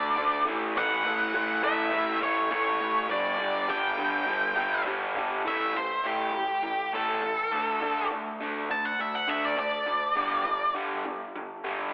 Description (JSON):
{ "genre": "rock", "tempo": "102 BPM", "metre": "4/4", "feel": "straight", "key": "A mixolydian", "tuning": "A4 = 439 Hz", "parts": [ { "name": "octave-fuzz lead guitar", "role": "melody", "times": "0.0-10.7 s", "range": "G4 to A5", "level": "-30 LUFS", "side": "equal", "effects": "distortion, slapback echo" }, { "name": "raw garage guitar", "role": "riff", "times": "0.0-11.9 s", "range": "G2 to D4", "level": "-32 LUFS", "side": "equal", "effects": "overdrive, slapback echo" } ], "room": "wet lush hall reverb, RT60 2.0 s, digital ambience", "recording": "big arena sound, telephone sound", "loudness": "-28 LUFS", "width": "mono", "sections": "0.0-5.5 A section; 5.5-11.9 B section", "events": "lead electric guitar solo 5.5-11.9", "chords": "0.5 A; 3.1 G5; 5.5 A5; 7.5 D5; 10.2 G5" }